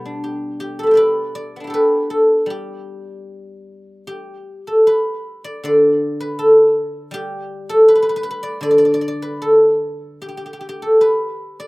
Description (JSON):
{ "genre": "chinese traditional, Chinese solo plucked strings", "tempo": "74-82 BPM", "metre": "2/4", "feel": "rubato", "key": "G gong mode", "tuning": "A4 = 440 Hz", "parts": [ { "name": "guzheng", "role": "solo", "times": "0.0-11.7 s", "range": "B2 to B5", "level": "-15 LUFS", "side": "equal", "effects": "none" } ], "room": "little or no reverb", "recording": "recorded outdoors, with no room sound", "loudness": "-13 LUFS", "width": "side -25 dB against mid", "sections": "0.0-4.1 A section; 4.1-11.7 B section", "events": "none", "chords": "none" }